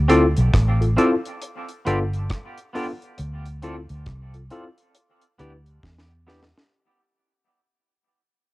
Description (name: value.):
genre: lovers rock reggae.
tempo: 68 BPM.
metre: 4/4.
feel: swing 61% on 16ths.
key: unclear.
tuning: A4 = 439 Hz.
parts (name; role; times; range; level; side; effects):
vintage muted fingered electric bass; bass; 0.0-6.5 s; G1 to E2; -22 LUFS; equal; none.
mellow tine electric piano; accompaniment; 0.1-6.4 s; B3 to B4; -21 LUFS; left 2 dB; cassette tape.
twangy electric guitar; stabs; 0.1-6.4 s; B3 to D5; -26 LUFS; right 2 dB; tremolo, cassette tape, analog delay.
deep reggae drum kit; drums; 0.1-6.8 s; hi-hat, kick drum, rim click, snare drum; -23 LUFS; equal; cassette tape.
room: small room ambience.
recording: home recording on cassette.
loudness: -19 LUFS.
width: side -19 dB against mid.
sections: 0.0-6.7 A section.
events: fade-out 0.0-6.7; drum fill 5.8-6.7.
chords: 0.0 Dm7; 1.4 G7; 3.2 Dm7; 4.9 G6/D.